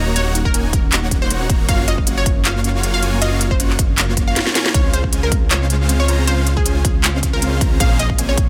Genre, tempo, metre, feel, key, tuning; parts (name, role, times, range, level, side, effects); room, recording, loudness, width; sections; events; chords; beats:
future bass; 157 BPM; 4/4; swing 54% on 16ths, half-time; Db major; A4 = 440 Hz
unison pluck; melody; 0.0-8.5 s; Ab4 to F5; -27 LUFS; equal; sidechain pumping, digital delay
soft round pluck; arpeggios; 0.0-8.4 s; Bb3 to Db5; -31 LUFS; equal; chorus, cassette tape, sidechain pumping, tape echo
supersaw chords; riff; 0.0-8.3 s; Ab3 to Bb5; -26 LUFS; equal; sidechain pumping
detuned saw bass; bass; 0.0-8.5 s; Eb1 to Db2; -22 LUFS; equal; chorus, sidechain pumping
trap drum kit; drums; 0.2-8.5 s; handclaps, hi-hat, snare drum; -21 LUFS; equal
electronic kick drum; drums; 0.5-8.5 s; -20 LUFS; equal
little or no reverb; -17 LUFS; mono
0.0-8.5 A section
drum fill 4.4-4.7
0.0 Ebm7; 1.7 Gbmaj7; 4.7 Dbmaj7; 7.8 Bbm9
| 0.16 0.54 0.92 1.30 | 1.69 2.07 2.45 2.83 | 3.22 3.60 3.98 4.36 | 4.75 5.13 5.51 5.89 | 6.27 6.66 7.04 7.42 | 7.80 8.18